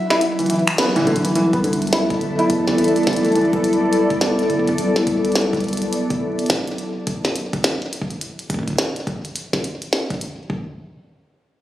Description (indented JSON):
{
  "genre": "IDM",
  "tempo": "105 BPM",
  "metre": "4/4",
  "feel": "swing 62% on 16ths",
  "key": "unclear",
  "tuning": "A4 = 440 Hz",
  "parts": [
    { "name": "soft struck synth lead", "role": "melody", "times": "0.0-0.8 s", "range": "E5", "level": "-31 LUFS", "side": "left 2 dB", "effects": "none" },
    { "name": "glassy FM pad", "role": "sustained chords", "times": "0.0-5.9 s", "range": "F#3 to D5", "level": "-20 LUFS", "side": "left 1 dB", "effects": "ensemble chorus, built-in reverb" },
    { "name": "felt-muted upright piano", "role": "arpeggios", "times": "0.1-3.6 s", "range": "D3 to E4", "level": "-19 LUFS", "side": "equal", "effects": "low-pass filter, digital delay" },
    { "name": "glitchy drum kit", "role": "drums", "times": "0.1-10.4 s", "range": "finger snaps, hi-hat, snare drum, toms", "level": "-23 LUFS", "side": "equal", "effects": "digital delay" },
    { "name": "round analog bass", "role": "bass", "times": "1.4-5.9 s", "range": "G1 to E2", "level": "-26 LUFS", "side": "equal", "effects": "none" },
    { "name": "electronic kick drum", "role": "drums", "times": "1.5-10.6 s", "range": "none", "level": "-27 LUFS", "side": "equal", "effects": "none" }
  ],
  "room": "moderate echo chamber reverb, RT60 2.2 s",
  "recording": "recorded on a phone in the room, club reverb",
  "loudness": "-17 LUFS",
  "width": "side -13 dB against mid",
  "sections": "0.0-1.4 A section; 1.4-10.5 B section; 10.5-11.6 C section",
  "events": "break 0.0-1.4; band accent 0.8; drum fill 1.1; filter sweep on felt piano 1.4-3.6",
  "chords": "0.0 N.C.; 1.4 Cmaj7; 5.9 N.C.",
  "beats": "0.21 0.78 | 1.35 1.93 2.50 3.07 | 3.64 4.21 4.78 5.36 | 5.93 6.50 7.07 7.64 | 8.21 8.78 9.36 9.93 | 10.50"
}